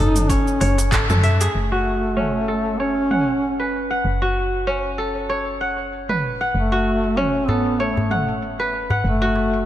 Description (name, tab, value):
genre	organic downtempo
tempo	96 BPM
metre	4/4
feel	swing 55% on 16ths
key	F# minor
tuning	A4 = 440 Hz
part	dark duduk	melody	0.0-9.7 s	A3 to D#4	-22 LUFS	equal	tape echo
part	kora	arpeggios	0.0-9.7 s	C#4 to F#5	-23 LUFS	equal	low-pass filter, tape echo
part	woody FM bass	bass	0.0-9.7 s	F#1 to F#2	-24 LUFS	equal	none
part	deep house drum kit	drums	0.2-9.6 s	handclaps, hi-hat, shaker, toms	-26 LUFS	right 1 dB	overdrive, low-pass filter on toms, studio reverb, low-pass filter on perc, low-pass filter on hats, low-pass filter on snare
part	electronic kick drum	drums	0.3-1.1 s	none	-23 LUFS	equal	overdrive, studio reverb
part	darbuka	percussion	0.3-1.5, 7.5-9.5 s	none	-27 LUFS	left 1 dB	none
room	moderate lush hall reverb, RT60 2.1 s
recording	dark, warm production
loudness	-18 LUFS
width	side -12 dB against mid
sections	0.0-1.5 A section; 1.5-9.7 B section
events	band accent 0.9-1.2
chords	0.0 A/F#; 1.5 F#m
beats	0.30 0.92 | 1.55 2.17 2.80 3.42 | 4.05 4.67 5.30 5.92 | 6.55 7.17 7.80 8.42 | 9.05